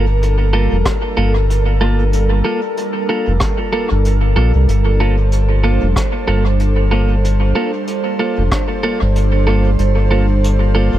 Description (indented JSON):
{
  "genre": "ambient dub",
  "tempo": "94 BPM",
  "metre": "4/4",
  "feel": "swing 58% on 16ths",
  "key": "G minor",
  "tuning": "A4 = 445 Hz",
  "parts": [
    { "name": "airy breathy pad", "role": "sustained chords", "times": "0.0-11.0 s", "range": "G3 to C5", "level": "-20 LUFS", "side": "right 1 dB", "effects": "chorus" },
    { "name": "clean electric guitar", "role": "stabs", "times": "0.0-11.0 s", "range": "Bb3 to A4", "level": "-21 LUFS", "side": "right 1 dB", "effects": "dub echo" },
    { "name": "round analog bass", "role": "bass", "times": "0.0-11.0 s", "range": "F1 to C2", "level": "-13 LUFS", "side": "equal", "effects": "none" },
    { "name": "jazz brush drum kit", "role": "drums", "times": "0.2-10.6 s", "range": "hi-hat, rim click", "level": "-26 LUFS", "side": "equal", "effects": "dub echo" },
    { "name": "electronic kick drum", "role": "drums", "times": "0.9-8.7 s", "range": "none", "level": "-20 LUFS", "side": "equal", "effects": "none" }
  ],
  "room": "small room ambience",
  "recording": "echo-heavy mix",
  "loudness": "-13 LUFS",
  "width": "side -13 dB against mid",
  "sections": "0.0-11.0 A section",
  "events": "none",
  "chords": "0.0 Gm9",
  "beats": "0.22 0.86 1.50 | 2.13 2.77 3.41 4.05 | 4.69 5.33 5.96 6.60 | 7.24 7.88 8.52 9.15 | 9.79 10.43"
}